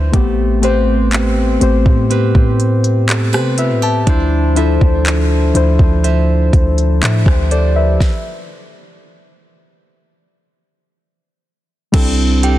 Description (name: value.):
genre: contemporary R&B.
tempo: 61 BPM.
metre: 4/4.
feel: straight.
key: A minor.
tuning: A4 = 437 Hz.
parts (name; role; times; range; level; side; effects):
muted felt-like synth keys; accompaniment; 0.0-12.6 s; F3 to A5; -17 LUFS; left 4 dB; chorus.
nylon-string guitar; arpeggios; 0.0-12.6 s; A3 to E5; -22 LUFS; right 8 dB; tape echo.
warm 808-style bass; bass; 0.0-12.6 s; A1 to C3; -15 LUFS; equal; none.
synth chime; texture; 0.0-0.6, 12.4-12.6 s; G5 to C6; -28 LUFS; right 1 dB; ensemble chorus, tape echo.
smooth R&B drum kit; drums; 0.1-12.6 s; crash cymbal, handclaps, hi-hat, kick drum, rim click, snare drum; -16 LUFS; equal; none.
room: little or no reverb.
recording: dense, heavily limited modern master.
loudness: -11 LUFS.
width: side -14 dB against mid.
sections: 0.0-11.9 A section.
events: stop 8.0-11.9.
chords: 0.1 Am9; 4.1 Dm9; 8.0 N.C.; 11.9 C69.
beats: | 0.14 1.12 2.10 3.09 | 4.07 5.05 6.04 7.02 | 8.01 8.99 9.97 10.96 | 11.94.